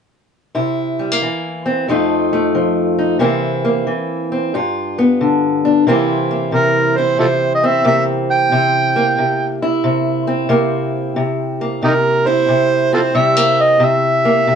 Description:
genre	acoustic country blues, solo or duo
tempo	91 BPM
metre	4/4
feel	swing 66% on 8ths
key	C mixolydian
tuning	A4 = 440 Hz
part	fingerpicked steel-string acoustic guitar	accompaniment	0.5-14.6 s	F2 to F4	-15 LUFS	left 1 dB	none
part	overdriven harmonica	melody	6.5-14.6 s	Eb4 to G5	-14 LUFS	right 2 dB	none
room	moderate studio reverb, RT60 0.5 s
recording	nothing above 10.4 kHz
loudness	-13 LUFS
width	side -7 dB against mid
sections	0.5-5.9 A section; 5.9-14.6 B section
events	none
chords	0.5 C7; 1.9 F7; 3.2 C7; 4.6 G7; 5.9 C7

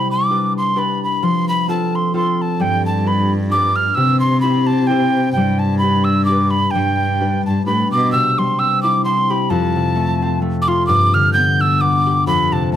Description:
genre	celtic folk, Celtic waltz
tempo	130 BPM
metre	3/4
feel	swing 56% on 8ths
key	G mixolydian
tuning	A4 = 440 Hz
part	mellow wooden whistle	melody	0.0-12.8 s	G5 to G6	-17 LUFS	right 1 dB	none
part	concert harp	accompaniment	0.0-12.8 s	F2 to C5	-18 LUFS	left 2 dB	none
part	dark cello	bass	2.6-8.1 s	G2 to C3	-18 LUFS	equal	none
room	moderate studio reverb, RT60 0.7 s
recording	none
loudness	-14 LUFS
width	side -10 dB against mid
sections	0.0-8.1 A section; 8.1-12.8 B section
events	none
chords	0.0 G; 1.2 F; 2.6 G; 4.0 C; 5.4 G; 8.1 C; 9.5 F; 10.9 G

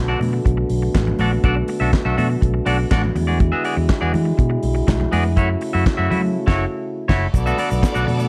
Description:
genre	disco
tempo	122 BPM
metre	4/4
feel	straight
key	B dorian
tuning	A4 = 435 Hz
part	dark French horn section	sustained chords	0.0-8.3 s	C#3 to F#4	-27 LUFS	equal	none
part	fingered electric bass	bass	0.0-8.3 s	F#1 to F#3	-23 LUFS	equal	none
part	clean electric guitar	accompaniment	0.1-8.2 s	A3 to E5	-26 LUFS	equal	none
part	damped 70s drum kit	drums	0.2-8.2 s	crash cymbal, handclaps, hi-hat, kick drum, snare drum	-22 LUFS	equal	none
part	congas	percussion	0.2-8.2 s	none	-31 LUFS	equal	none
part	clear studio violin section	second line	7.3-8.3 s	B3 to D5	-28 LUFS	equal	none
part	tube shaker	percussion	7.3-8.3 s	none	-45 LUFS	equal	none
room	light reverb, studio ambience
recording	dark, warm production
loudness	-19 LUFS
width	mono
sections	0.0-7.3 A section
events	band accent 6.4-7.3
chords	0.0 Bm7; 3.2 E9; 5.4 F#m7; 7.3 Bm7

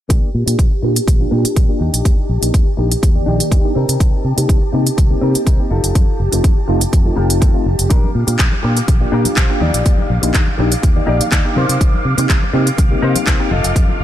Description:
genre	filtered disco house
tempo	123 BPM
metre	4/4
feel	straight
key	unclear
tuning	A4 = 445 Hz
part	phased string machine	sustained chords	0.1-14.0 s	G4 to D6	-25 LUFS	equal	ensemble chorus, phaser, sidechain pumping, low-pass filter
part	direct-recorded clean electric guitar	riff	0.1-14.0 s	Bb3 to Eb5	-25 LUFS	left 3 dB	lush chorus, sidechain pumping, low-pass filter
part	fingered electric bass	bass	0.1-14.0 s	F1 to C3	-18 LUFS	equal	sidechain pumping, low-pass filter
part	electronic kick drum	drums	0.1-13.9 s	none	-14 LUFS	equal	small room ambience
part	house drum kit	drums	0.1-13.9 s	handclaps, hi-hat	-21 LUFS	equal	small room ambience
part	reed electric piano	accompaniment	0.5-13.5 s	Eb3 to D5	-21 LUFS	equal	phaser, sidechain pumping, low-pass filter
part	tambourine and congas	percussion	7.9-14.0 s	none	-28 LUFS	left 4 dB	none
room	light reverb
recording	none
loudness	-12 LUFS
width	side -12 dB against mid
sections	0.1-14.0 A section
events	filter sweep 0.1-14.0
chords	0.1 Bb6; 1.8 Ebmaj7; 3.8 Cm7; 5.7 F7; 7.9 Bb6; 9.6 Ebmaj7; 11.6 Cm7; 13.5 F7

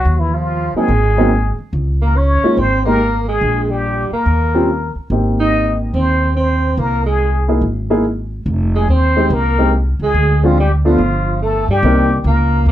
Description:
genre	jazz, small-group swing and bop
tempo	143 BPM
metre	4/4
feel	swing 66% on 8ths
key	F minor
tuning	A4 = 441 Hz
part	trumpet with plunger mute	melody	0.0-12.7 s	E4 to Eb5	-19 LUFS	left 2 dB	none
part	warm alto saxophone	second line	0.0-12.7 s	E3 to Eb4	-20 LUFS	right 3 dB	none
part	upright bass	bass	0.1-12.7 s	F1 to G2	-16 LUFS	equal	none
part	warm upright piano	accompaniment	0.8-12.1 s	Gb3 to Bb4	-16 LUFS	equal	none
room	light reverb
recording	dark, warm production, lossy compression artefacts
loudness	-13 LUFS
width	side -12 dB against mid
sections	0.0-11.8 A section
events	none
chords	0.1 Ebmadd9; 0.9 Ab7; 1.7 Dbsus2; 3.4 Gm/Bb; 4.3 Eb13; 5.1 Abmaj9; 6.8 C7alt; 8.5 Fm7; 10.1 Dm7b5; 11.0 Fadd9/G; 11.8 Cm7

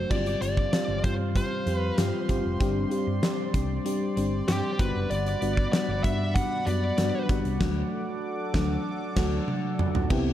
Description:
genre	1980s-style pop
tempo	96 BPM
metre	4/4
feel	straight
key	unclear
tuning	A4 = 440 Hz
part	high-gain lead guitar	melody	0.0-7.2 s	G4 to F#5	-32 LUFS	equal	distortion, digital delay
part	FM electric piano with soft pad layer	accompaniment	0.0-10.3 s	F#3 to G4	-29 LUFS	left 1 dB	chorus
part	hollow-body short-scale fingered electric bass	bass	0.0-10.3 s	F1 to G2	-30 LUFS	equal	none
part	sweeping resonant pad	sustained chords	0.1-10.3 s	E3 to D6	-37 LUFS	equal	chorus
part	huge arena drum kit	drums	0.1-10.2 s	crash cymbal, hi-hat, kick drum, snare drum, toms	-28 LUFS	equal	none
room	light reverb, studio reverb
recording	dark, warm production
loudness	-24 LUFS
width	side -12 dB against mid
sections	0.1-10.1 A section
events	band accent 7.6-10.1; drum fill 9.5-10.1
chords	0.1 Fsus2/G; 2.6 Csus2/G; 4.8 Gmaj7; 7.6 D

